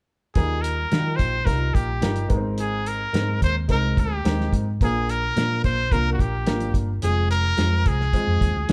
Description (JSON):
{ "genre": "uptempo 1960s-style soul", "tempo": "108 BPM", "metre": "4/4", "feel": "straight", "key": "Eb major", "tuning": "A4 = 441 Hz", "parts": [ { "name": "bright trumpet", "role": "melody", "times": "0.4-8.7 s", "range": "Gb4 to C5", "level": "-28 LUFS", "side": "equal", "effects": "none" }, { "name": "dark upright piano", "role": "accompaniment", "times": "0.4-8.7 s", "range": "F3 to Bb4", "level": "-31 LUFS", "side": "equal", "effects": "none" }, { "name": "hollow-body short-scale fingered electric bass", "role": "bass", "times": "0.4-8.7 s", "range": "F1 to Eb3", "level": "-27 LUFS", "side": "equal", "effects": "none" }, { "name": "cloth-damped thuddy drum kit", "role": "drums", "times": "0.4-8.7 s", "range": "hi-hat, kick drum, snare drum", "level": "-26 LUFS", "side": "equal", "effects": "none" } ], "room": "moderate large studio reverb, RT60 1.4 s", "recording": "band playing live in one room", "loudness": "-22 LUFS", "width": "mono", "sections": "0.4-8.7 A section", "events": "none", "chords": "0.4 Ebadd9; 2.3 Abadd9; 4.8 Bb; 7.0 Fm" }